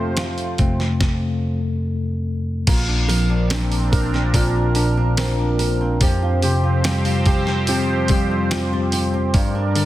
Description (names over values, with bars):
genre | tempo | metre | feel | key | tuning
pop ballad | 72 BPM | 4/4 | straight | Bb major | A4 = 444 Hz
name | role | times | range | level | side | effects
bell-like tine electric piano | accompaniment | 0.0-9.9 s | Bb1 to Bb4 | -20 LUFS | left 1 dB | medium stereo tremolo
sweeping resonant pad | sustained chords | 0.0-9.9 s | F2 to D5 | -25 LUFS | right 1 dB | chorus
flamenco guitar | arpeggios | 0.0-9.9 s | G2 to Bb4 | -26 LUFS | right 3 dB | none
dusty soul sampler-style drum kit | drums | 0.2-9.9 s | crash cymbal, hi-hat, kick drum, snare drum | -21 LUFS | equal | none
room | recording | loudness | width
moderate concert hall reverb, RT60 2.3 s | dense, heavily limited modern master, faint mains hum | -17 LUFS | side -14 dB against mid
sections
0.0-2.7 A section; 2.7-9.9 B section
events
tine electric piano solo 0.0-2.7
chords
0.0 F; 2.7 Bbadd9; 6.0 Fsus2; 9.3 Gm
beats
0.17 1.01 1.84 | 2.67 3.51 4.34 5.17 | 6.01 6.84 7.67 8.51 | 9.34